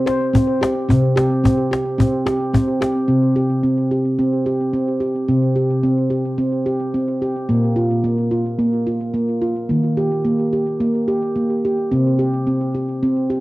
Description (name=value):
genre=world meditative, meditative tuned percussion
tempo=109 BPM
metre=4/4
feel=swing 55% on 16ths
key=C minor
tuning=A4 = 440 Hz
part: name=handpan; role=arpeggios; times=0.0-13.4 s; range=Bb2 to C5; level=-16 LUFS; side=equal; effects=cassette tape, analog delay
part: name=cajon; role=percussion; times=0.1-3.0 s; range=none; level=-18 LUFS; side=left 2 dB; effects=none
room=wet studio reverb, RT60 0.6 s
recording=home recording on cassette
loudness=-16 LUFS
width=side -18 dB against mid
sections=0.0-3.1 A section; 3.1-13.4 B section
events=none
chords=0.0 C5; 7.5 Bb5; 9.7 Eb; 11.9 C5